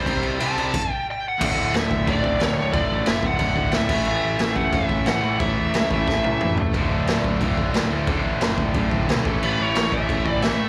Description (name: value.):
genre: punk rock.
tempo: 180 BPM.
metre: 4/4.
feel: straight.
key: D major.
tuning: A4 = 442 Hz.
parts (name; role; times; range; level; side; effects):
bluesy overdriven lead guitar; melody; 0.0-6.6, 9.4-10.7 s; B4 to A5; -28 LUFS; equal; distortion, delay.
biting overdriven guitar; riff; 0.0-10.7 s; D2 to C4; -34 LUFS; equal; none.
overdriven electric guitar; riff; 0.0-10.7 s; D2 to C4; -29 LUFS; equal; slapback echo.
sludgy distorted guitar; riff; 0.0-0.7, 6.7-10.7 s; D2 to C5; -34 LUFS; equal; none.
fuzz picked electric bass; bass; 0.0-10.7 s; D1 to C3; -29 LUFS; equal; overdrive.
raw garage drum kit; drums; 0.1-10.5 s; crash cymbal, kick drum, snare drum, toms; -26 LUFS; equal; none.
room: little or no reverb.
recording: live gig heard through the venue's PA, club reverb.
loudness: -22 LUFS.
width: mono.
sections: 0.0-1.4 A section; 1.4-10.7 B section.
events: half time 0.0-1.4; lead electric guitar solo 0.0-1.4; stop 0.7-1.4; drum fill 6.1-6.7.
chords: 0.0 C; 1.4 D; 3.9 A5; 6.7 D; 9.3 A.